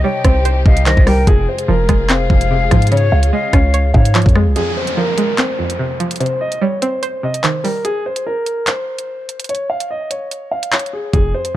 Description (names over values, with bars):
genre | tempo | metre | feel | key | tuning
hip hop, drill | 146 BPM | 4/4 | half-time | F minor | A4 = 439 Hz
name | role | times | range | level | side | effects
dark grand piano | melody | 0.0-11.5 s | Ab4 to F5 | -20 LUFS | equal | low-pass filter, ping-pong delay
reedy concert flute | second line | 0.0-4.1 s | Db5 to G5 | -22 LUFS | left 6 dB | ping-pong delay
string-like resonator pluck | accompaniment | 0.0-7.8, 11.1-11.6 s | F2 to Db5 | -20 LUFS | right 2 dB | chorus, low-pass filter
dark symphonic string section | sustained chords | 0.0-4.5 s | C3 to Ab4 | -26 LUFS | left 2 dB | none
hard-hitting 808-style bass | bass | 0.0-4.6, 11.1-11.3 s | F1 to Ab2 | -14 LUFS | equal | none
drill drum kit | drums | 0.2-11.5 s | handclaps, hi-hat, kick drum, rim click | -15 LUFS | equal | none
downlifter | sound effects | 4.6-7.8 s | none | -26 LUFS | equal | none
room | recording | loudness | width
little or no reverb | dark, warm production | -13 LUFS | side -14 dB against mid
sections
0.0-4.6 A section; 4.6-11.6 B section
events
break 4.6-11.1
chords
0.0 Cm; 1.3 Fm; 2.9 Db; 4.6 Fm; 6.2 Cm; 7.8 N.C.